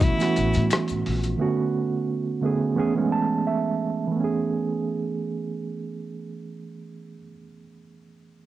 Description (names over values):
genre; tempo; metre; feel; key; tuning
R&B, neo-soul; 87 BPM; 4/4; swing 55% on 16ths; A major; A4 = 440 Hz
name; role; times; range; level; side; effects
breathy tenor saxophone; melody; 0.0-0.7 s; E4; -28 LUFS; left 1 dB; cassette tape
mellow reed electric piano; accompaniment; 0.0-8.5 s; D3 to A5; -24 LUFS; right 4 dB; fast tremolo, cassette tape
upright bass; bass; 0.0-1.3 s; A1 to A2; -26 LUFS; left 2 dB; none
boom bap sampler-style drum kit; drums; 0.0-1.4 s; hi-hat, kick drum, rim click; -25 LUFS; left 2 dB; overdrive, cassette tape
maracas and finger snaps; percussion; 0.0-1.4 s; none; -40 LUFS; left 11 dB; none
room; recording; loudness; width
light reverb, studio reverb; home recording on cassette; -22 LUFS; side -13 dB against mid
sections
0.0-4.2 A section; 4.2-6.9 B section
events
reed electric piano fill 2.8-4.2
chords
0.0 A6; 1.4 Bm9; 2.8 Amaj9